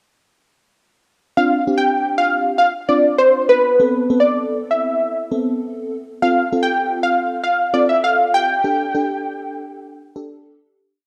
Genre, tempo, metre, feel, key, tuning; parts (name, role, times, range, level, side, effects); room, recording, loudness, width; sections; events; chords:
pop; 99 BPM; 4/4; straight; A4 = 440 Hz
funky polysynth comp; melody; 1.4-10.4 s; B4 to G5; -18 LUFS; equal; chorus, analog delay
FM electric piano with soft pad layer; accompaniment; 1.4-10.8 s; B3 to A4; -24 LUFS; equal; chorus, tremolo
moderate lush hall reverb, RT60 2.3 s; rough home demo mix; -17 LUFS; mono
1.4-11.1 pre-chorus
fade-out 8.6-11.1
1.4 Dm7; 3.8 Amadd9; 6.2 F; 8.6 Gsus2